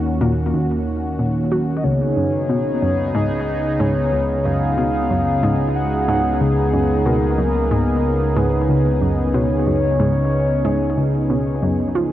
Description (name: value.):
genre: ambient, sequencer-driven space music.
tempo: 92 BPM.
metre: 4/4.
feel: straight.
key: unclear.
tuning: A4 = 440 Hz.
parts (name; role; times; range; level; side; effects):
sweeping resonant pad; sustained chords; 0.0-12.1 s; Db3 to Ab4; -20 LUFS; equal; chorus.
analog drone; bass; 0.0-12.1 s; Db2 to Eb2; -24 LUFS; equal; chorus.
analog pluck; riff; 0.2-12.1 s; Db2 to Gb3; -22 LUFS; equal; chorus, ping-pong delay.
soft octave-layered synth lead; melody; 1.8-11.6 s; Ab4 to Gb5; -22 LUFS; left 1 dB; chorus, phaser, ping-pong delay.
room: moderate huge ambient reverb, RT60 8.0 s.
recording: worn, warbling old tape, cassette tape, warbly pitch drift.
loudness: -16 LUFS.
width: side -13 dB against mid.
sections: 0.0-12.1 A section.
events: none.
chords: 0.0 Ebm7; 1.8 Db9sus4.